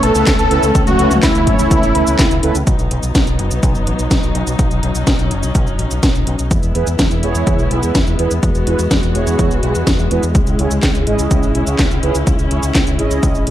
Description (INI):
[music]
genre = italo disco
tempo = 125 BPM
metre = 4/4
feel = straight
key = unclear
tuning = A4 = 440 Hz
[part]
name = wide unison lead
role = melody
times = 0.0-2.6 s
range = E4 to A4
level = -16 LUFS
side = right 1 dB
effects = ping-pong delay
[part]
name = warm studio string section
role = sustained chords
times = 0.0-13.5 s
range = F#3 to F#4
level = -21 LUFS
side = left 2 dB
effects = none
[part]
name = analog synth brass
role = stabs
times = 0.0-2.6, 6.8-13.5 s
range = B3 to D#5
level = -21 LUFS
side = right 4 dB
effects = chorus, ping-pong delay
[part]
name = fingered electric bass with an envelope filter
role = bass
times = 0.0-13.5 s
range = E1 to E2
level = -19 LUFS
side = equal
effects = none
[part]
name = house drum kit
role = drums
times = 0.0-13.5 s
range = cabasa, handclaps, hi-hat, snare drum, toms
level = -20 LUFS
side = equal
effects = overdrive
[part]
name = electronic kick drum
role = drums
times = 0.3-13.3 s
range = none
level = -17 LUFS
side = equal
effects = overdrive
[sound]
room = light reverb, digital ambience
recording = dark, warm production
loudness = -12 LUFS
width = side -12 dB against mid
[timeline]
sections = 0.0-2.7 A section; 2.7-13.5 B section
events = none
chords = 0.0 Aadd9; 2.7 B; 6.5 E; 10.3 C#m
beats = 0.27 | 0.75 1.23 1.71 2.19 | 2.67 3.15 3.63 4.11 | 4.59 5.07 5.55 6.03 | 6.51 6.99 7.47 7.95 | 8.43 8.91 9.39 9.87 | 10.35 10.83 11.31 11.79 | 12.27 12.75 13.23